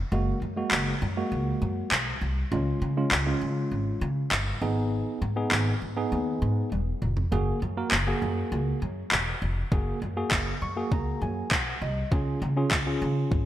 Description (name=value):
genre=dance-pop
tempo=100 BPM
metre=4/4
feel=straight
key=F# major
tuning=A4 = 440 Hz
part: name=tine electric piano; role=accompaniment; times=0.1-13.5 s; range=G#3 to C#6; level=-30 LUFS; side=right 1 dB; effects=overdrive, slow stereo tremolo, sidechain pumping
part: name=upright bass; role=bass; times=0.1-13.5 s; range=E1 to C#3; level=-28 LUFS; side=equal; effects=sidechain pumping
part: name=smooth R&B drum kit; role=drums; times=0.7-13.5 s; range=handclaps, kick drum, toms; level=-28 LUFS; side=equal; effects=gated reverb
room=light reverb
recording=bright 1980s-style digital production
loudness=-25 LUFS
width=side -12 dB against mid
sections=0.0-13.5 A section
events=drum fill 6.7-7.3; tine electric piano fill 10.3-12.1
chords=0.0 F#add9; 2.5 C#; 4.6 G#m; 7.3 F#add9; 12.1 C#